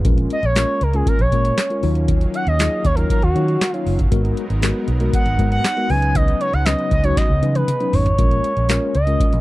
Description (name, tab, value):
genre	early-eighties boogie funk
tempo	118 BPM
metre	4/4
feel	straight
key	unclear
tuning	A4 = 440 Hz
part	mellow tine electric piano	accompaniment	0.0-9.3 s	F#3 to C#5	-25 LUFS	left 4 dB	medium stereo tremolo
part	brassy analog pad	sustained chords	0.0-9.4 s	C#3 to E#5	-30 LUFS	right 3 dB	chorus
part	vintage muted fingered electric bass	bass	0.0-9.4 s	F#1 to D#3	-19 LUFS	equal	none
part	booming analog drum machine	drums	0.0-9.4 s	handclaps, hi-hat, kick drum, snare drum, toms	-19 LUFS	equal	none
part	expressive portamento lead	melody	0.3-9.4 s	F#4 to G#5	-22 LUFS	equal	chorus
room	little or no reverb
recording	dry, close 1970s-style studio recording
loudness	-16 LUFS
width	side -18 dB against mid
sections	0.1-9.4 A section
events	analog synth lead solo 0.1-9.4; drum fill 7.2-8.2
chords	0.1 A#m7; 1.8 D#m9; 4.1 G#m9; 5.9 C#9sus4; 8.2 A#m7